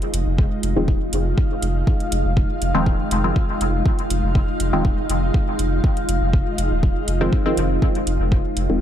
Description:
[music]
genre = dub techno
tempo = 121 BPM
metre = 4/4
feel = straight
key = F minor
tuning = A4 = 440 Hz
[part]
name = granular cloud pad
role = sustained chords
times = 0.0-8.8 s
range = Ab3 to F5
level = -25 LUFS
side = equal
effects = built-in reverb, sidechain pumping
[part]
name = electronic hi-hat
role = drums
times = 0.0-8.7 s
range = none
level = -29 LUFS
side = right 2 dB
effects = overdrive, small room ambience
[part]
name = soft dub sub bass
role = bass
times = 0.1-8.8 s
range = Eb1 to F1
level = -22 LUFS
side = equal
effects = sidechain pumping
[part]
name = electronic kick drum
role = drums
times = 0.4-8.4 s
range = none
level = -19 LUFS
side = equal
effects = overdrive, small room ambience
[part]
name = filtered dub chord stab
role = stabs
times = 0.8-8.8 s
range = Eb3 to C4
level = -24 LUFS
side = left 1 dB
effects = chorus, phaser, sidechain pumping, dub echo
[sound]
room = little or no reverb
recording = dark, warm production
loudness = -18 LUFS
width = side -10 dB against mid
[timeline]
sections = 0.0-8.8 A section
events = none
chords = 0.0 Fm7

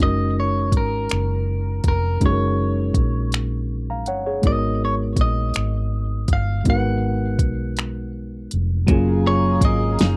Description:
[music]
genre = slow six-eight R&B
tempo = 54 BPM (dotted quarters)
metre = 6/8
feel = straight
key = F# major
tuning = A4 = 441 Hz
[part]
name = clean electric guitar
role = melody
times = 0.0-10.2 s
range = A#4 to F#5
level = -28 LUFS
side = equal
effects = none
[part]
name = reed electric piano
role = accompaniment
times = 0.0-10.2 s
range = F#3 to A#5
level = -27 LUFS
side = equal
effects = overdrive
[part]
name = vintage muted fingered electric bass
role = bass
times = 0.0-10.2 s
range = E#1 to B1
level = -25 LUFS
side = equal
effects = none
[part]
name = smooth R&B drum kit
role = drums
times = 0.7-10.2 s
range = finger snaps, hi-hat, kick drum, snare drum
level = -22 LUFS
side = equal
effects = none
[part]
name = clean electric guitar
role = second line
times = 8.9-10.2 s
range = F#3 to G#4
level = -30 LUFS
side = equal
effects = none
[part]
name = hollow soft pad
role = sustained chords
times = 8.9-10.2 s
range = G#4 to A#5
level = -35 LUFS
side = equal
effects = chorus
[part]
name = warm horn section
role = stabs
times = 8.9-10.2 s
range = C#4 to G#4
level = -35 LUFS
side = equal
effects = none
[sound]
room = little or no reverb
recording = dry, close 1970s-style studio recording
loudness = -21 LUFS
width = mono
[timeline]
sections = 0.0-8.9 A section; 8.9-10.2 B section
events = none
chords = 0.0 F#6; 4.4 G#m9; 8.9 F#maj9

